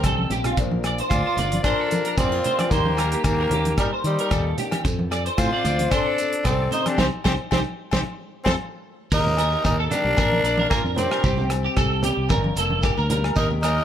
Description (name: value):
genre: highlife guitar band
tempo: 112 BPM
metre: 4/4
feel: straight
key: Bb major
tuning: A4 = 441 Hz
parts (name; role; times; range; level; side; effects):
- growling tenor saxophone; melody; 0.0-13.8 s; G3 to F4; -24 LUFS; equal; none
- clear trumpet; second line; 0.0-13.8 s; Eb4 to D5; -32 LUFS; left 4 dB; none
- picked steel-string acoustic guitar; accompaniment; 0.0-13.8 s; G2 to Bb4; -30 LUFS; left 5 dB; none
- electric guitar at the edge of break-up; arpeggios; 0.0-13.8 s; Eb4 to D5; -27 LUFS; right 3 dB; ensemble chorus, slapback echo
- fingered electric bass; bass; 0.0-13.8 s; F1 to Eb3; -25 LUFS; equal; none
- warm soul drum kit; drums; 0.0-13.8 s; crash cymbal, hi-hat, kick drum, rim click, snare drum; -26 LUFS; equal; none
- agogo bells; percussion; 0.0-13.8 s; none; -34 LUFS; left 6 dB; none
- congas; percussion; 0.0-13.6 s; none; -29 LUFS; right 1 dB; none
- shekere; percussion; 0.0-13.8 s; none; -32 LUFS; right 1 dB; none
room: little or no reverb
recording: none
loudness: -19 LUFS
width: side -10 dB against mid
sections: 0.0-9.1 A section; 9.1-13.8 B section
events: drum fill 0.0-0.6; band accent 7.0-9.1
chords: 0.0 Cm; 0.6 Bbadd9; 2.7 Eb; 4.8 F; 7.0 Cm; 8.1 F; 9.1 Eb; 10.2 Bb; 11.2 C5; 12.3 Gm